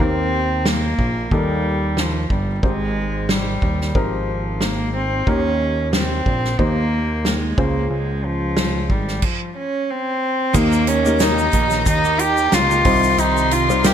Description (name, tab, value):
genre	piano-driven pop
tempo	91 BPM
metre	4/4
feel	swing 56% on 16ths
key	Eb mixolydian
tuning	A4 = 440 Hz
part	warm cello	melody	0.0-13.9 s	F3 to G4	-20 LUFS	equal	none
part	warm upright piano	accompaniment	0.0-13.9 s	Ab2 to Db5	-25 LUFS	left 2 dB	wide subtle chorus
part	fat analog bass	bass	0.0-13.9 s	G1 to Eb2	-23 LUFS	equal	none
part	natural country drum kit	drums	0.0-13.9 s	crash cymbal, hi-hat, kick drum, snare drum	-21 LUFS	equal	gated reverb
part	warm studio string section	sustained chords	10.5-13.9 s	G4 to C6	-28 LUFS	left 1 dB	none
part	twelve-string electric guitar	riff	10.5-13.9 s	C3 to G4	-26 LUFS	right 9 dB	ensemble chorus
part	tube shaker	percussion	10.5-13.9 s	none	-33 LUFS	left 10 dB	none
room	light reverb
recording	bright 1980s-style digital production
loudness	-16 LUFS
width	side -9 dB against mid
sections	0.0-10.5 A section; 10.5-13.9 B section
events	none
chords	0.0 Eb; 2.6 Abmaj7; 5.3 Eb; 7.6 Dbmaj7; 10.5 Eb; 12.9 Cm